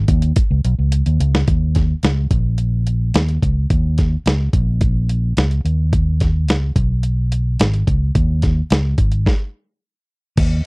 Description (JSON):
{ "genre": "indie pop, bedroom pop", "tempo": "108 BPM", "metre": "4/4", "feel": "straight", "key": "unclear", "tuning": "A4 = 439 Hz", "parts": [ { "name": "fingered electric bass", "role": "bass", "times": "0.0-10.6 s", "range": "Ab1 to Eb2", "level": "-16 LUFS", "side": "equal", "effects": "none" }, { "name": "dusty soul sampler-style drum kit", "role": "drums", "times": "0.1-10.5 s", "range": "crash cymbal, hi-hat, kick drum, snare drum", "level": "-18 LUFS", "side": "equal", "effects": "none" } ], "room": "little or no reverb", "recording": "dry, close 1970s-style studio recording", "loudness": "-15 LUFS", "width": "side -36 dB against mid", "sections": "0.0-1.5 A section; 1.5-10.4 B section", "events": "drum fill 0.4-1.5; stop 9.3-10.4", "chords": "none" }